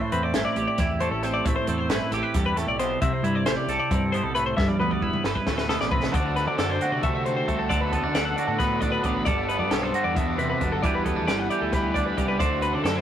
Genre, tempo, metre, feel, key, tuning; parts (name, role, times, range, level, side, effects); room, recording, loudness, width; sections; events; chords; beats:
math rock and midwest emo; 269 BPM (eighths); 7/8; straight; G major; A4 = 441 Hz
twelve-string electric guitar; accompaniment; 0.0-13.0 s; G2 to D5; -27 LUFS; right 3 dB; warbly pitch drift
twelve-string electric guitar; arpeggios; 0.0-13.0 s; A4 to F#5; -28 LUFS; left 3 dB; tape echo
growling fingered electric bass; bass; 0.1-13.0 s; E1 to D3; -31 LUFS; equal; overdrive
compact cocktail drum kit; drums; 0.1-13.0 s; hi-hat, kick drum, snare drum, toms; -28 LUFS; equal
raw garage guitar; riff; 6.1-13.0 s; G2 to F#4; -30 LUFS; left 1 dB; overdrive
light reverb; rough rehearsal-room recording; -22 LUFS; side -10 dB against mid
0.0-6.1 A section; 6.1-13.0 B section
drum fill 4.6-6.1
0.0 Am7; 3.0 C6; 4.6 G6; 6.1 D13; 7.7 Bm7/D; 9.3 Gmaj9; 10.8 Em7; 12.4 D13
0.12 0.34 0.57 0.79 1.01 1.23 | 1.46 1.68 1.90 2.12 2.35 2.57 2.79 | 3.02 3.24 3.46 3.69 3.91 4.13 4.35 | 4.58 4.80 5.02 5.25 5.47 5.69 5.92 | 6.14 6.36 6.59 6.81 7.03 7.26 7.48 | 7.71 7.93 8.15 8.38 8.60 8.82 9.05 | 9.27 9.49 9.72 9.94 10.16 10.39 10.61 | 10.84 11.06 11.28 11.51 11.73 11.95 12.18 | 12.40 12.62 12.85